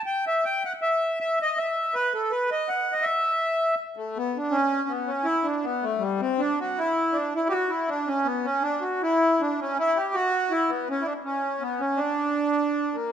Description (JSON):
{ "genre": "musette", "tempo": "161 BPM", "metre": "3/4", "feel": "rubato", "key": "E harmonic minor", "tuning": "A4 = 440 Hz", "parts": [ { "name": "accordion", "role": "solo", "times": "0.0-13.1 s", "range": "G3 to G5", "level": "-23 LUFS", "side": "equal", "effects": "none" } ], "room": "moderate recital hall reverb, RT60 1.7 s", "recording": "minimal, uncompressed stereo recording", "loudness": "-23 LUFS", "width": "side -8 dB against mid", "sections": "0.0-4.2 A section; 4.2-13.1 B section", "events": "none", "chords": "none", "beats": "0.04 0.42 | 0.80 1.18 1.55 | 1.93 2.30 2.67 | 3.05 3.42 3.81 | 4.19 4.57 4.94 | 5.31 5.68 6.05 | 6.42 6.79 7.16 | 7.53 7.90 8.28 | 8.66 9.04 9.41 | 9.78 10.15 10.52 | 10.89 11.26 11.63 | 12.00 12.38 12.76" }